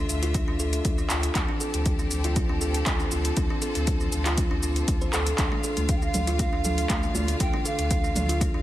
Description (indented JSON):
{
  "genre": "afro house",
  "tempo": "119 BPM",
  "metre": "4/4",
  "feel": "straight",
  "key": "D minor",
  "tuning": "A4 = 436 Hz",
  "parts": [
    { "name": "clear studio string section", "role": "sustained chords", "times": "0.0-8.6 s", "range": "D3 to F5", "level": "-34 LUFS", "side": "left 2 dB", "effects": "sidechain pumping" },
    { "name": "kalimba", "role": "arpeggios", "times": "0.0-8.6 s", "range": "D4 to C5", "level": "-31 LUFS", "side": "equal", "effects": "sidechain pumping, tape echo" },
    { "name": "warm sub bass", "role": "bass", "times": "0.0-8.6 s", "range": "D2", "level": "-28 LUFS", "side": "equal", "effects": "tube saturation, sidechain pumping" },
    { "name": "deep house drum kit", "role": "drums", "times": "0.1-8.5 s", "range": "cabasa, handclaps, hi-hat", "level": "-30 LUFS", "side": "equal", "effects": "overdrive" },
    { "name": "electronic kick drum", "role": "drums", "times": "0.3-8.5 s", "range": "none", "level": "-27 LUFS", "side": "equal", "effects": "overdrive" },
    { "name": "congas", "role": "percussion", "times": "5.5-8.5 s", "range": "none", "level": "-32 LUFS", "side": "right 2 dB", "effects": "none" },
    { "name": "breathy pan flute", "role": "melody", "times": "5.9-8.4 s", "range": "D5 to G5", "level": "-32 LUFS", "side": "right 4 dB", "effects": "tape echo" }
  ],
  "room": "small room ambience",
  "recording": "none",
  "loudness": "-23 LUFS",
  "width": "side -14 dB against mid",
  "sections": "0.0-8.6 A section",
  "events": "none",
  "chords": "0.0 Dm; 1.4 F/D; 5.4 Dm"
}